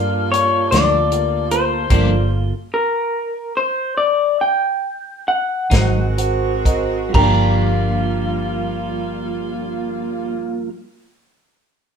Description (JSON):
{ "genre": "slow blues", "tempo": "40-51 BPM (dotted quarters)", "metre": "12/8", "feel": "straight", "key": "G minor", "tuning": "A4 = 440 Hz", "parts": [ { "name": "electric guitar through a small old amp", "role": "melody", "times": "0.0-10.7 s", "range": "Bb4 to Bb5", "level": "-18 LUFS", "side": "left 2 dB", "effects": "none" }, { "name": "warm grand piano", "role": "accompaniment", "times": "0.0-10.7 s", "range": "F4 to Gb5", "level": "-26 LUFS", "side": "right 4 dB", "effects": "none" }, { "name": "mellow tonewheel organ", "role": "sustained chords", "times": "0.0-10.7 s", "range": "Bb3 to A5", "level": "-27 LUFS", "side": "right 4 dB", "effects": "slow rotary speaker" }, { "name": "warm saxophone section", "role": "sustained chords", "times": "0.0-10.7 s", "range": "G3 to Gb4", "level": "-27 LUFS", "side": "right 1 dB", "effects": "none" }, { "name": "vintage muted fingered electric bass", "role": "bass", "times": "0.0-10.7 s", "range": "G1 to G2", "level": "-20 LUFS", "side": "equal", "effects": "none" }, { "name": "warm soul drum kit", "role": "drums", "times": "0.3-7.4 s", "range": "crash cymbal, hi-hat, kick drum, snare drum", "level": "-19 LUFS", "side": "equal", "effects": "none" }, { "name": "semi-hollow electric guitar", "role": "accompaniment", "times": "0.7-10.8 s", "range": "G2 to Eb4", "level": "-24 LUFS", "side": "left 1 dB", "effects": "harmonic tremolo" }, { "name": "dark upright piano", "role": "second line", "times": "7.2-10.7 s", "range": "Bb4 to G5", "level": "-29 LUFS", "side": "equal", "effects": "none" } ], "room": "moderate studio reverb, RT60 0.8 s", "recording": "band playing live in one room", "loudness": "-16 LUFS", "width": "side -6 dB against mid", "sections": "0.0-7.1 A section; 7.1-12.0 B section", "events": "slowing down 0.3-7.1; stop 1.9-5.7", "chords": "0.0 Gm7; 5.7 Ab7; 7.1 Gm7" }